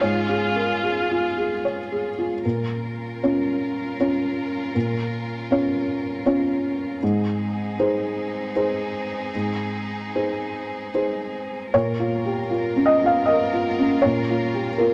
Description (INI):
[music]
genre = neoclassical piano and strings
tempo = 74-80 BPM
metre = 3/4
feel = rubato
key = unclear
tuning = A4 = 440 Hz
[part]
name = felt-muted upright piano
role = accompaniment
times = 0.0-14.9 s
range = Ab2 to F5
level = -24 LUFS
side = equal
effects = none
[part]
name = rich viola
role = accompaniment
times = 0.0-2.0 s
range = F4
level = -28 LUFS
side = equal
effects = none
[part]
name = rich chamber string section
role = sustained chords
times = 0.0-14.9 s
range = Bb3 to Bb4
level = -34 LUFS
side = equal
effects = none
[sound]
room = moderate studio reverb, RT60 0.9 s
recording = none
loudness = -23 LUFS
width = mono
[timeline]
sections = 0.0-2.4 A section; 2.4-11.7 B section; 11.7-14.9 A section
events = none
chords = 0.0 Db/Ab; 2.4 Bbm; 7.0 Ab; 11.7 Bbm